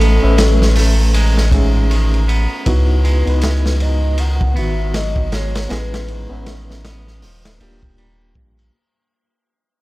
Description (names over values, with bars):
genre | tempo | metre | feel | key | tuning
trip hop | 79 BPM | 4/4 | swing 60% on 16ths | unclear | A4 = 440 Hz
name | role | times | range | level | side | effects
pure breathy sine lead | melody | 0.0-7.2 s | A4 to F#5 | -26 LUFS | left 2 dB | lush chorus, cassette tape, tape echo
reed electric piano | accompaniment | 0.0-8.8 s | D#3 to E5 | -23 LUFS | left 1 dB | tremolo, tape echo
clean electric guitar | arpeggios | 0.0-8.7 s | G2 to B3 | -27 LUFS | right 3 dB | vintage 12-bit sampler grit, ping-pong delay
round analog bass | bass | 0.0-8.7 s | D#1 to C#2 | -15 LUFS | equal | none
crunchy breakbeat drum kit | drums | 0.0-8.7 s | hi-hat, kick drum, ride cymbal, snare drum | -21 LUFS | equal | none
room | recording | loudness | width
small room ambience | none | -13 LUFS | side -19 dB against mid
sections
0.0-8.7 A section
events
fade-out 0.6-8.7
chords
0.0 F#m7/A; 2.7 C#m11; 5.7 Amaj9; 7.2 D#maj7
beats
0.38 1.14 1.90 | 2.66 3.42 4.18 4.94 | 5.70 6.46 7.22 7.98